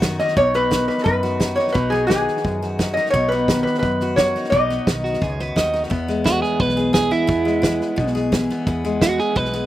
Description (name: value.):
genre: honky-tonk and classic country.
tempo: 173 BPM.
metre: 4/4.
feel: straight.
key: E major.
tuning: A4 = 441 Hz.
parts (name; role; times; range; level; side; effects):
picked steel-string acoustic guitar; accompaniment; 0.0-9.7 s; E2 to G#4; -22 LUFS; left 2 dB; none.
vintage muted fingered electric bass; bass; 0.0-9.7 s; B1 to F#2; -28 LUFS; equal; none.
natural country drum kit; drums; 0.0-9.6 s; hi-hat, kick drum, snare drum; -22 LUFS; right 1 dB; none.
lap resonator guitar; melody; 0.2-5.7 s; G#4 to D#5; -20 LUFS; equal; none.
electric guitar at the edge of break-up; second line; 5.0-9.7 s; E4 to D#5; -21 LUFS; right 4 dB; slapback echo.
room: little or no reverb.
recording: recorded outdoors, with no room sound.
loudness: -17 LUFS.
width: side -14 dB against mid.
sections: 0.0-5.9 A section; 5.9-9.7 B section.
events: clean electric guitar solo 5.9-9.7.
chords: 0.0 B; 5.9 E.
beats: 0.02 | 0.37 0.71 1.06 1.41 | 1.75 2.10 2.44 2.79 | 3.14 3.48 3.83 4.17 | 4.52 4.87 5.21 5.56 | 5.91 6.25 6.60 6.94 | 7.29 7.64 7.98 8.33 | 8.68 9.02 9.37.